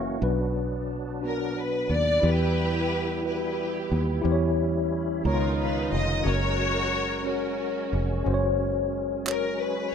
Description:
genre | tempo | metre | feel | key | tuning
slow gospel | 60 BPM (dotted quarters) | 6/8 | straight | B harmonic minor | A4 = 440 Hz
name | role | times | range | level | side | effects
mellow tine electric piano | accompaniment | 0.0-9.9 s | B2 to A#5 | -28 LUFS | left 3 dB | medium stereo tremolo
bright tonewheel organ | sustained chords | 0.0-9.9 s | D#3 to F#4 | -34 LUFS | right 3 dB | chorus vibrato, slow rotary speaker
fingered electric bass | bass | 0.0-9.9 s | E#1 to E2 | -28 LUFS | right 1 dB | none
warm symphonic string section | melody | 1.2-9.9 s | C#4 to D#5 | -28 LUFS | left 1 dB | none
group handclap | percussion | 9.3-9.6 s | none | -33 LUFS | right 5 dB | none
room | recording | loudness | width
light reverb | rough home demo mix | -24 LUFS | side -7 dB against mid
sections
0.2-9.9 A section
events
none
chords
0.2 Bm; 2.2 Em; 4.2 C#dim/E; 5.2 C#13; 6.2 F#

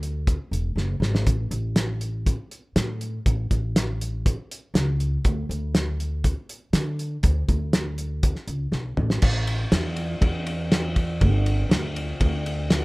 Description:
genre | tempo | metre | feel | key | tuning
folk rock and heartland rock | 120 BPM | 4/4 | straight | unclear | A4 = 443 Hz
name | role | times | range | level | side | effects
upright bass | bass | 0.0-12.8 s | E1 to D3 | -25 LUFS | equal | none
cloth-damped thuddy drum kit | drums | 0.0-12.8 s | crash cymbal, hi-hat, kick drum, ride cymbal, snare drum, toms | -23 LUFS | equal | none
room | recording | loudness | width
little or no reverb | rough home demo mix | -22 LUFS | side -23 dB against mid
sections
0.0-9.2 A section; 9.2-12.8 B section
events
drum fill 0.8-1.3, 8.7-9.2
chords
none

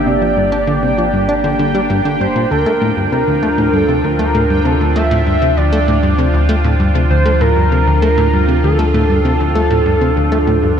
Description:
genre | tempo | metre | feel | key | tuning
ambient, sequencer-driven space music | 98 BPM | 4/4 | straight | unclear | A4 = 439 Hz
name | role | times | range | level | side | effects
pulse-width lead | melody | 0.0-10.8 s | A4 to E5 | -18 LUFS | right 1 dB | chorus, ping-pong delay
evolving wavetable pad | sustained chords | 0.0-10.8 s | F3 to G4 | -18 LUFS | equal | chorus, built-in reverb
warm sub bass | bass | 0.0-10.8 s | G1 to D2 | -17 LUFS | equal | none
bubbling stepped-filter texture | texture | 0.0-10.8 s | G5 | -25 LUFS | right 3 dB | chorus, built-in reverb
plucky analog bass | riff | 0.1-10.8 s | D2 to D4 | -17 LUFS | left 1 dB | ping-pong delay
room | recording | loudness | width
moderate plate reverb, RT60 2.8 s | dreamy mix soaked in reverb | -11 LUFS | side -8 dB against mid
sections
0.0-10.8 A section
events
none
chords
0.0 Gm; 2.5 Dm

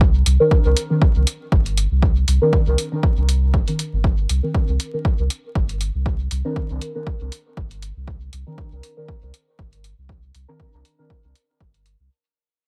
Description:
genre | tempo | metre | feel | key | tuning
dub techno | 119 BPM | 4/4 | swing 55% on 16ths | C minor | A4 = 442 Hz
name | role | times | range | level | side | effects
warm sub bass | bass | 0.0-12.1 s | G1 to C2 | -22 LUFS | equal | sidechain pumping
electronic kick drum | drums | 0.0-11.7 s | none | -21 LUFS | equal | none
electronic hi-hat | drums | 0.3-12.0 s | none | -29 LUFS | equal | dub echo
deep mellow chord stab | stabs | 0.4-11.1 s | Eb3 to Bb4 | -24 LUFS | equal | chorus, phaser, cassette tape, sidechain pumping, dub echo
room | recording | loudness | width
digital ambience | echo-heavy mix, vinyl crackle | -20 LUFS | mono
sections
0.0-12.1 A section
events
fade-out 0.0-12.1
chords
0.0 Cm9

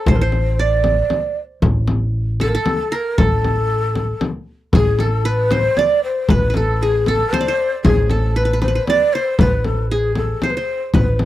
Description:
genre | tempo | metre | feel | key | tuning
Arabic maqam ensemble | 116 BPM | 3/4 | straight | A maqam kurd, A maqam nahawand from 4.7 s | A4 = 440 Hz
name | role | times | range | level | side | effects
breathy mellow ney | melody | 0.0-11.2 s | G#4 to D5 | -19 LUFS | equal | none
qanun | second line | 0.0-11.3 s | G#4 to D5 | -24 LUFS | right 2 dB | none
upright bass | bass | 0.1-11.3 s | A1 | -18 LUFS | equal | none
frame drum | percussion | 0.1-11.3 s | none | -18 LUFS | left 2 dB | none
room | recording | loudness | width
little or no reverb | dry, close 1970s-style studio recording | -15 LUFS | side -14 dB against mid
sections
0.0-4.7 A section; 4.7-11.3 B section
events
none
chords
none

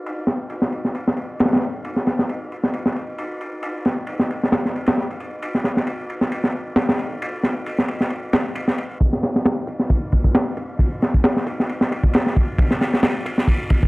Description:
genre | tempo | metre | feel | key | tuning
breakbeat, breaks | 134 BPM | 4/4 | swing 55% on 16ths | unclear | A4 = 441 Hz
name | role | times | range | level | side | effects
crunchy breakbeat drum kit | drums | 0.1-13.9 s | kick drum, ride cymbal, snare drum | -18 LUFS | equal | low-pass filter on kick, low-pass filter on cymbals, low-pass filter on snare, low-pass filter on room
warm 808-style bass | bass | 9.7-13.9 s | E1 to E2 | -37 LUFS | equal | none
room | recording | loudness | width
light reverb | dry, gritty hardware recording | -19 LUFS | side -23 dB against mid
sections
0.0-9.0 A section; 9.0-13.9 B section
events
build-up 9.0-13.9; filter sweep on drum 9.0-13.9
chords
none

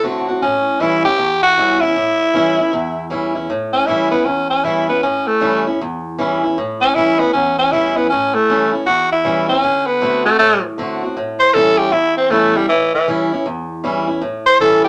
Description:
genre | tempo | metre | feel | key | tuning
rock | 156 BPM | 4/4 | swing 64% on 8ths | A mixolydian | A4 = 439 Hz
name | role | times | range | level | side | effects
raspy tenor saxophone | melody | 0.0-14.9 s | E3 to C5 | -16 LUFS | equal | none
picked swing-style acoustic guitar | accompaniment | 0.0-14.9 s | E2 to F#4 | -22 LUFS | equal | none
room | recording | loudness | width
moderate club reverb, RT60 0.6 s | none | -16 LUFS | mono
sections
0.0-3.5 A section; 3.5-14.9 B section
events
tenor saxophone solo 3.5-14.9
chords
0.4 A7; 9.6 D7; 11.2 A7

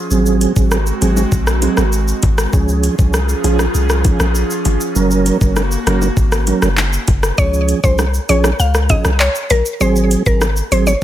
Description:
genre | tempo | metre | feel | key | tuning
dancehall | 99 BPM | 4/4 | straight | Db major | A4 = 443 Hz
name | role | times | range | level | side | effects
airy breathy pad | sustained chords | 0.0-7.4 s | F3 to Ab4 | -22 LUFS | right 1 dB | chorus, sidechain pumping
mellow tonewheel organ | accompaniment | 0.1-10.9 s | F3 to Bb4 | -17 LUFS | right 4 dB | chorus vibrato, slow rotary speaker, sidechain pumping
punchy sub bass | bass | 0.1-11.0 s | Gb1 to Db2 | -16 LUFS | equal | none
island pop drum kit | drums | 0.1-11.0 s | handclaps, hi-hat, kick drum, rim click, shaker | -17 LUFS | equal | none
bongos | percussion | 1.0-11.0 s | none | -26 LUFS | left 8 dB | none
mallet-like synth pluck | melody | 7.4-11.0 s | Bb4 to F5 | -18 LUFS | left 2 dB | chorus, digital delay
room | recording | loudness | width
little or no reverb | none | -12 LUFS | side -12 dB against mid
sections
0.0-7.4 A section; 7.4-11.0 B section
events
none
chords
0.1 Ab7; 2.5 Db; 5.0 Gb; 7.4 Db; 9.8 Ab7

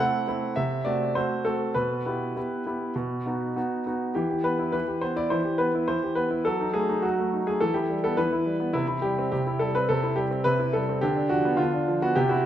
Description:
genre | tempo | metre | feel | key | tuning
classical-period piano sonatina | 105 BPM | 4/4 | straight | E minor | A4 = 440 Hz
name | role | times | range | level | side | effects
clear baby grand piano | solo | 0.0-12.5 s | B2 to F#5 | -23 LUFS | equal | none
room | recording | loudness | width
wet recital hall reverb, RT60 1.5 s | none | -24 LUFS | side -11 dB against mid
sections
0.0-4.2 A section; 4.2-12.5 B section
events
none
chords
0.0 Am; 0.6 F#dim/C; 1.8 Em/B; 3.0 B; 4.2 Em; 6.5 D#dim/F#; 7.6 Em; 8.7 C; 11.0 Bdim/D

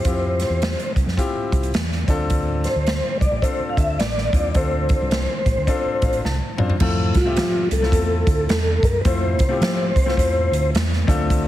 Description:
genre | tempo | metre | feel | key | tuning
uptempo 1960s-style soul | 107 BPM | 4/4 | swing 61% on 8ths | F major | A4 = 445 Hz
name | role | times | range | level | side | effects
mellow tonewheel organ | melody | 0.0-10.7 s | F4 to F5 | -23 LUFS | left 1 dB | chorus vibrato, slow rotary speaker
clear grand piano | accompaniment | 0.0-11.5 s | A3 to A5 | -26 LUFS | left 4 dB | none
swinging big-band drum kit | drums | 0.0-11.5 s | crash cymbal, hi-hat, kick drum, snare drum, toms | -21 LUFS | right 1 dB | none
fingered electric bass | bass | 0.1-11.5 s | A1 to F3 | -23 LUFS | equal | none
room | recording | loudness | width
light reverb, studio reverb | heavily compressed radio sound | -18 LUFS | side -14 dB against mid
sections
0.0-6.8 A section; 6.8-11.5 B section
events
grand piano fill 5.7-6.8; drum fill 6.2-6.8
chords
0.0 Fmaj7(no3); 2.0 Dm7; 6.8 Fmaj7

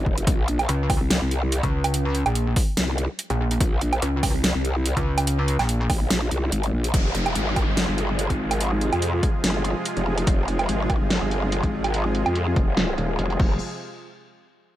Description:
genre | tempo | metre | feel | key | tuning
heavy wobble dubstep | 144 BPM | 4/4 | swing 54% on 16ths, half-time | F minor | A4 = 440 Hz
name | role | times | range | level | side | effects
growl bass | bass | 0.0-13.6 s | Eb1 to F2 | -24 LUFS | equal | chorus, overdrive
electronic kick drum | drums | 0.1-13.5 s | none | -23 LUFS | equal | none
dubstep drum kit | drums | 0.2-13.5 s | crash cymbal, hi-hat, snare drum, woodblock | -26 LUFS | right 2 dB | low-pass filter on snare, low-pass filter on hats, low-pass filter on perc, low-pass filter on cymbals
pulsing pluck wobble bass | bass | 0.7-5.9 s | Bb1 to Db2 | -22 LUFS | equal | chorus, overdrive
supersaw pad | sustained chords | 6.9-13.6 s | C3 to Ab4 | -29 LUFS | right 1 dB | sidechain pumping
downlifter | sound effects | 6.9-10.3 s | none | -32 LUFS | equal | none
room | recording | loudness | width
little or no reverb | none | -20 LUFS | side -13 dB against mid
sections
0.0-6.9 A section; 6.9-13.6 B section; 13.6-14.8 C section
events
drop 0.0-6.9; kick drops out 6.5-6.9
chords
0.3 Bbm; 6.9 Fm; 13.6 N.C.

